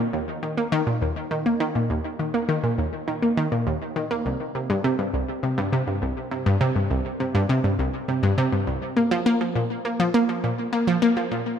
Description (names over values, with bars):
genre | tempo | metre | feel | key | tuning
ambient | 102 BPM | 4/4 | straight | unclear | A4 = 440 Hz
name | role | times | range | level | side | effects
analog pluck | solo | 0.0-11.4 s | C2 to Bb3 | -21 LUFS | equal | chorus, analog delay
room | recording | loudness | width
wet plate reverb, RT60 2.6 s | dreamy mix soaked in reverb | -21 LUFS | side -8 dB against mid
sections
0.0-11.6 A section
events
none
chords
none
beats
0.14 0.73 1.31 | 1.90 2.49 3.08 3.67 | 4.26 4.84 5.43 6.02 | 6.61 7.20 7.79 8.37 | 8.96 9.55 10.14 10.73 | 11.31